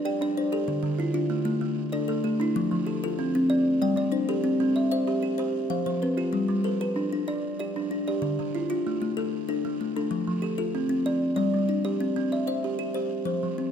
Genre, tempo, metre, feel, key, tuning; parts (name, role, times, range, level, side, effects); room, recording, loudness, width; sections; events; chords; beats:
southern african traditional, mbira-style interlocking cycle; 127 BPM (dotted quarters); 12/8; straight; G mixolydian; A4 = 443 Hz
buzzing kalimba; arpeggios; 0.0-13.7 s; D3 to E5; -28 LUFS; right 4 dB
kalimba; arpeggios; 0.0-13.7 s; D3 to G5; -27 LUFS; left 4 dB
wet recital hall reverb, RT60 1.4 s; -24 LUFS; side -8 dB against mid
0.0-6.3 A section; 6.3-13.7 B section
0.0 G5; 0.7 Dm; 2.6 F; 3.5 G5; 4.4 C; 5.4 F5; 6.3 G; 8.2 Dm; 10.1 F; 11.1 G5; 12.0 C; 13.0 F5
0.21 | 0.68 1.15 1.62 2.09 | 2.56 3.03 3.50 3.98 | 4.45 4.92 5.39 5.86 | 6.34 6.81 7.28 7.75 | 8.23 8.70 9.17 9.64 | 10.12 10.59 11.06 11.54 | 12.01 12.48 12.96 13.43